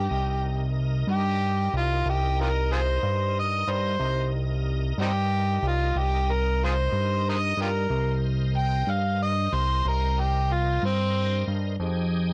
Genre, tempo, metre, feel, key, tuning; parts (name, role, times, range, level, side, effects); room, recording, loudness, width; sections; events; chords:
slow blues; 62 BPM (dotted quarters); 12/8; straight; C minor; A4 = 441 Hz
overdriven harmonica; melody; 0.0-11.5 s; C4 to G5; -29 LUFS; equal
bright tonewheel organ; sustained chords; 0.0-12.3 s; Eb4 to Eb5; -40 LUFS; equal; slow rotary speaker, overdrive, chorus vibrato
fat analog bass; bass; 0.0-12.3 s; C2 to G2; -28 LUFS; equal
little or no reverb; -25 LUFS; mono
0.0-12.3 A section
harmonica solo 0.0-12.3
0.0 Cm7; 11.8 Fm7